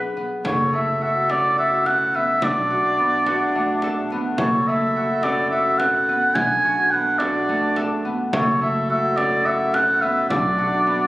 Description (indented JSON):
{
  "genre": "contemporary instrumental, chamber music in an uneven meter",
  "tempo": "213 BPM (eighths)",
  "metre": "7/8",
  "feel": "straight",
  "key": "unclear",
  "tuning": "A4 = 441 Hz",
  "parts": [
    { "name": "warm oboe", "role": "melody", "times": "0.0-11.1 s", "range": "B4 to G#5", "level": "-19 LUFS", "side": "equal", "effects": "none" },
    { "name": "concert harp", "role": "arpeggios", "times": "0.0-11.1 s", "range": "A3 to B4", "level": "-26 LUFS", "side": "left 1 dB", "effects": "none" },
    { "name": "upright bass", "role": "bass", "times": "0.0-11.1 s", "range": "F#1 to B1", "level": "-30 LUFS", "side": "equal", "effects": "none" },
    { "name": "frame drum", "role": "percussion", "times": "0.2-10.6 s", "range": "none", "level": "-29 LUFS", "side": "equal", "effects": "none" },
    { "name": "clear woodwind section", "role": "sustained chords", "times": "0.5-11.1 s", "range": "F#3 to A4", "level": "-27 LUFS", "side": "right 1 dB", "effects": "none" }
  ],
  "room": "wet recital hall reverb, RT60 1.5 s",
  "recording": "recorded on a phone in the room, club reverb",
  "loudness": "-18 LUFS",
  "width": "side -17 dB against mid",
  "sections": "0.4-11.1 A section",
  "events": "none",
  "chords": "0.4 F#m7; 2.4 Bm7; 4.4 F#m7; 6.4 Bm7; 8.3 F#m7; 10.3 Bm7"
}